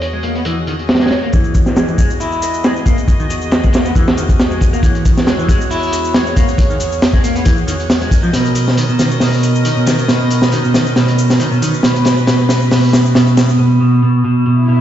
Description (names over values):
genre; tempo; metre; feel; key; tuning
breakbeat, breaks; 137 BPM; 4/4; swing 54% on 16ths; E lydian; A4 = 439 Hz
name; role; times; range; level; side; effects
soft synth bell; melody; 0.0-1.3 s; C#5; -29 LUFS; right 1 dB; chorus, phaser, AM radio sound, tape echo
warm studio string section; sustained chords; 0.0-13.6 s; E2 to D#5; -20 LUFS; right 1 dB; sidechain pumping, low-pass filter
crunchy breakbeat drum kit; drums; 0.0-13.5 s; hi-hat, kick drum, snare drum; -14 LUFS; equal; low-pass filter on kick, low-pass filter on hats, low-pass filter on snare, low-pass filter on room
semi-hollow electric guitar; riff; 0.1-14.8 s; B2 to E4; -15 LUFS; right 1 dB; tube saturation, low-pass filter, tape echo
shaker; drums; 1.3-13.6 s; none; -30 LUFS; left 3 dB; none
swell; sound effects; 14.6-14.8 s; none; -23 LUFS; left 1 dB; none
room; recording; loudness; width
wet lush hall reverb, RT60 1.7 s, studio reverb; played on a big sound system in a bare room, stone room reverb, nothing above 7.8 kHz; -11 LUFS; side -11 dB against mid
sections
0.0-1.3 A section; 1.3-14.8 B section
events
build-up 1.3-14.8; filter sweep on drum 1.3-14.8; filter sweep on clean electric guitar 1.3-14.8; drum fill 8.3-13.6; swell 14.6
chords
0.0 Emaj9; 8.1 Bmaj9